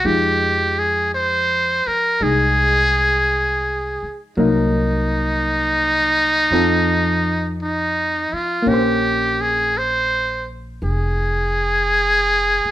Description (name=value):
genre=jazz ballad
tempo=56 BPM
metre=4/4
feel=swing 68% on 8ths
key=F minor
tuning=A4 = 438 Hz
part: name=trumpet with metal mute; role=melody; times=0.0-12.7 s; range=Eb4 to C5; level=-17 LUFS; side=equal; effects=plate reverb
part: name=hollow-body jazz guitar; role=accompaniment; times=0.0-12.7 s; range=F3 to C5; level=-22 LUFS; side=left 1 dB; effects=none
part: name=upright bass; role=bass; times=0.0-12.7 s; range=F1 to F2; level=-24 LUFS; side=equal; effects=none
room=moderate studio reverb, RT60 0.8 s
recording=none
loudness=-16 LUFS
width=side -13 dB against mid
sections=0.0-12.7 A section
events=none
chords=0.0 Fm7; 4.4 Cm7b5; 6.5 F7; 8.7 Bbm9